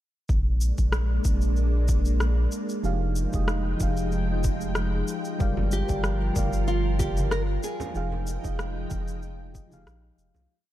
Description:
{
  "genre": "sunset chillout",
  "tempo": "94 BPM",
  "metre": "4/4",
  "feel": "swing 54% on 16ths",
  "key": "F dorian",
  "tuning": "A4 = 438 Hz",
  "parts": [
    { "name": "soft string machine", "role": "sustained chords", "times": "0.5-10.5 s", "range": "F3 to G5", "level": "-32 LUFS", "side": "equal", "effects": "ensemble chorus" },
    { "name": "round analog bass", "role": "bass", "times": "0.3-10.5 s", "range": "F1 to C2", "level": "-26 LUFS", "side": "equal", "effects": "none" },
    { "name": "electronic kick drum", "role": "drums", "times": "0.3-9.7 s", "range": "none", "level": "-28 LUFS", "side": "equal", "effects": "small room ambience" },
    { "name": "electronic shaker and rim click", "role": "drums", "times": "0.3-10.5 s", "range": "none", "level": "-34 LUFS", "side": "equal", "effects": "small room ambience" },
    { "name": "mellow FM electric piano", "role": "accompaniment", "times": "2.8-10.5 s", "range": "F3 to G5", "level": "-33 LUFS", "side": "moving between left 4 dB and right 6 dB", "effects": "chorus, auto-pan, digital delay" },
    { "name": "congas", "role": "percussion", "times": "5.6-10.5 s", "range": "none", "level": "-38 LUFS", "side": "right 2 dB", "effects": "none" },
    { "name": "nylon-string guitar", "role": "melody", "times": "5.7-9.8 s", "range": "F4 to Bb4", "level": "-33 LUFS", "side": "right 2 dB", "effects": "digital delay" }
  ],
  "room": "digital ambience",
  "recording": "dark, warm production",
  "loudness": "-23 LUFS",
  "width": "side -14 dB against mid",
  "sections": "0.3-10.5 groove",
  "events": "fade-out 7.1-10.5",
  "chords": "0.3 Bb7; 2.8 Fm9; 5.4 Gm7; 8.0 Fm9"
}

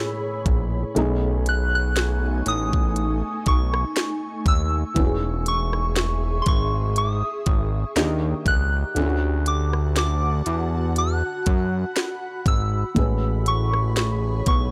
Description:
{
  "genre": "contemporary R&B",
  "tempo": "60 BPM",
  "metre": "4/4",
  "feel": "swing 54% on 16ths",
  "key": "E major",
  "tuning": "A4 = 440 Hz",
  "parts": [
    { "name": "soft synth bell", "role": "melody", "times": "0.0-14.6 s", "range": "C6 to F#6", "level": "-30 LUFS", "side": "equal", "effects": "chorus, phaser" },
    { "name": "felt-muted upright piano", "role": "accompaniment", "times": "0.0-14.7 s", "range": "A2 to B4", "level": "-31 LUFS", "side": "equal", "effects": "none" },
    { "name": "ethereal airy pad", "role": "sustained chords", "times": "0.0-14.7 s", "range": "A3 to C#6", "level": "-34 LUFS", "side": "equal", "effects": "ensemble chorus, built-in reverb, sidechain pumping" },
    { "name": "glassy wavetable pluck", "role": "texture", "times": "0.0-0.6, 8.0-9.4 s", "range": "A#4", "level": "-44 LUFS", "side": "equal", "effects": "none" },
    { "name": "fat analog bass", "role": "bass", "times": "0.5-14.7 s", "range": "E1 to F#2", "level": "-25 LUFS", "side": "equal", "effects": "none" },
    { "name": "trap drum kit", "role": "drums", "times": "0.5-14.7 s", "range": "hi-hat, kick drum, rim click, snare drum", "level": "-25 LUFS", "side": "equal", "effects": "none" }
  ],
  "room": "digital ambience",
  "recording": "dry, gritty hardware recording",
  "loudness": "-23 LUFS",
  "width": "mono",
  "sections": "0.0-14.7 A section",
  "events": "none",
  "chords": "0.0 Amaj9; 1.0 B13; 5.0 E6; 8.0 D#maj7; 9.0 Dmaj7; 13.0 Amaj9"
}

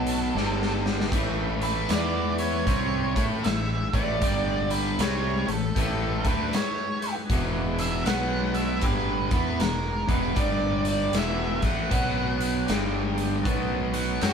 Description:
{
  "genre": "blues rock power trio and southern rock",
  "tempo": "78 BPM",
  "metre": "4/4",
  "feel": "swing 63% on 8ths",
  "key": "unclear",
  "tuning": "A4 = 442 Hz",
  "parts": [
    { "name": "octave-fuzz lead guitar", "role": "melody", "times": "0.0-14.3 s", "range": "A4 to G5", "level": "-30 LUFS", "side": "right 3 dB", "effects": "distortion" },
    { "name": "distorted electric guitar", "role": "riff", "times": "0.0-14.3 s", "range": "E2 to A4", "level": "-27 LUFS", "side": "equal", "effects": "distortion" },
    { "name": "fuzz fingered electric bass", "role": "bass", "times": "0.0-14.3 s", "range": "E1 to A2", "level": "-31 LUFS", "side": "equal", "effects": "overdrive" },
    { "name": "percussive tonewheel organ", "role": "sustained chords", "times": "0.1-14.3 s", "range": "F#3 to G5", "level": "-37 LUFS", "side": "right 2 dB", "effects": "slow rotary speaker, overdrive" },
    { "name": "raw garage drum kit", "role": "drums", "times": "0.1-14.3 s", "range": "hi-hat, kick drum, snare drum, splash cymbal", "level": "-28 LUFS", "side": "left 1 dB", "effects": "none" }
  ],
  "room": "light reverb",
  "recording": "band playing live in one room",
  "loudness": "-23 LUFS",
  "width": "side -6 dB against mid",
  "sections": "0.0-14.3 A section",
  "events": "drum fill 0.3-1.1",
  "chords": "0.3 G5; 1.1 A7; 1.9 E5; 2.7 A7; 4.2 G5; 5.0 A7; 7.3 E7; 8.1 B5; 8.8 E7; 10.4 G5; 11.1 E7; 11.9 B5; 12.7 G5; 13.5 B7"
}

